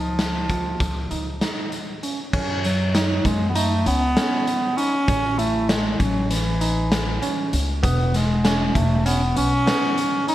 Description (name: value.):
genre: progressive instrumental, band music in an uneven meter.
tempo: 196 BPM (eighths).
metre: 9/8.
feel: straight.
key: F# dorian.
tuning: A4 = 444 Hz.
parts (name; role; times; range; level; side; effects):
clear bass clarinet; melody; 0.0-10.3 s; E3 to D#4; -23 LUFS; equal; none.
barky tine electric piano; arpeggios; 0.0-10.3 s; B3 to E#4; -28 LUFS; right 2 dB; wide subtle chorus, digital delay.
upright bass; bass; 0.0-9.6 s; E1 to F#2; -24 LUFS; equal; none.
raw garage drum kit; drums; 0.2-10.3 s; crash cymbal, hi-hat, kick drum, snare drum; -25 LUFS; left 1 dB; gated reverb.
room: light reverb, studio reverb.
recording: bright 1980s-style digital production.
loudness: -19 LUFS.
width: side -14 dB against mid.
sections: 0.0-2.3 A section; 2.3-10.3 B section.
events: none.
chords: 0.0 C#; 2.3 F#5; 5.1 A; 7.8 E.